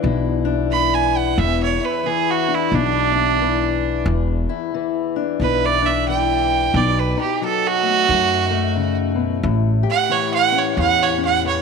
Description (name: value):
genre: acoustic country blues, solo or duo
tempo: 89 BPM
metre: 4/4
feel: swing 61% on 8ths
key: unclear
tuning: A4 = 441 Hz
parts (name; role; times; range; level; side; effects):
- fingerpicked steel-string acoustic guitar; accompaniment; 0.0-11.6 s; E2 to G4; -21 LUFS; left 10 dB; none
- upright bass; bass; 0.0-11.6 s; E1 to F#2; -22 LUFS; equal; none
- clear fiddle; melody; 0.7-11.6 s; D4 to B5; -18 LUFS; right 9 dB; none
room: moderate echo chamber reverb, RT60 2.1 s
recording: 1960s-style stereo with parts hard left and right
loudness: -16 LUFS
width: side -5 dB against mid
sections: 0.0-11.6 A section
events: fiddle solo 0.0-11.6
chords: 0.0 E5; 6.7 B7; 9.4 A7